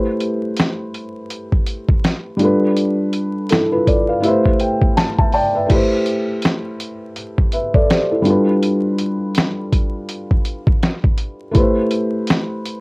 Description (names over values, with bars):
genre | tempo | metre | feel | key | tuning
lo-fi hip hop | 82 BPM | 4/4 | swing 59% on 16ths | A minor | A4 = 442 Hz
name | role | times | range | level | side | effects
felt-muted upright piano | accompaniment | 0.0-12.8 s | G3 to A5 | -17 LUFS | equal | cassette tape, low-pass filter, plate reverb
dusty soul sampler-style drum kit | drums | 0.2-12.8 s | crash cymbal, hi-hat, kick drum, snare drum | -16 LUFS | equal | overdrive
room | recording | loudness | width
moderate studio ambience, RT60 0.5 s | worn, warbling old tape, cassette tape, vinyl crackle, warbly pitch drift | -15 LUFS | side -28 dB against mid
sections
0.0-5.7 A section; 5.7-12.8 A section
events
felt piano fill 3.5-5.7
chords
0.0 Am7; 2.4 G7; 4.2 Am7; 8.3 G7; 11.6 Am7